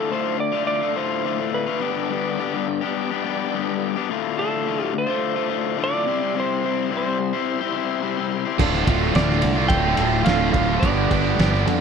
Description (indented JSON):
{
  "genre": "classic rock",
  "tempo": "106 BPM",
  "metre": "4/4",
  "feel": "straight",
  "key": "D dorian",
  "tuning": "A4 = 440 Hz",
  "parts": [
    { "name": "clean lap steel guitar", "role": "melody", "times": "0.0-11.6 s", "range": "A4 to G5", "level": "-26 LUFS", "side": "right 4 dB", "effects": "none" },
    { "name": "tonewheel organ", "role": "sustained chords", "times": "0.0-11.8 s", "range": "G3 to D5", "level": "-35 LUFS", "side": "right 4 dB", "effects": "slow rotary speaker, overdrive, chorus vibrato" },
    { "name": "crunchy overdriven guitar", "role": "riff", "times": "0.0-11.8 s", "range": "D2 to C5", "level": "-24 LUFS", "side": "left 13 dB", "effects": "none" },
    { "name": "picked old ladder-braced acoustic guitar", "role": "accompaniment", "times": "8.6-11.8 s", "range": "G2 to B4", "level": "-30 LUFS", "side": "right 8 dB", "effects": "none" },
    { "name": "biting overdriven guitar", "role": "riff", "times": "8.6-11.8 s", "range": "D2 to G4", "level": "-25 LUFS", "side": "right 16 dB", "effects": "none" },
    { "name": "crunchy overdriven guitar", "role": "riff", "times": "8.6-11.8 s", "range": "D2 to G3", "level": "-28 LUFS", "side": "right 3 dB", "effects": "none" },
    { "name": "fuzz fingered electric bass", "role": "bass", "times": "8.6-11.8 s", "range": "D1 to F2", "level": "-23 LUFS", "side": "right 1 dB", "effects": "overdrive" },
    { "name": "cloth-damped thuddy drum kit", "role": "drums", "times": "8.6-11.8 s", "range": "crash cymbal, kick drum, ride cymbal, snare drum", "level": "-23 LUFS", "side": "equal", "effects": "none" }
  ],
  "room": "small room ambience",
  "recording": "none",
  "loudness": "-19 LUFS",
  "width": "side -6 dB against mid",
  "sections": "0.0-11.8 A section",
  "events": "none",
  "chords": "0.0 Dm; 1.8 G; 4.1 Dm; 6.1 C; 8.6 Dm; 10.8 G"
}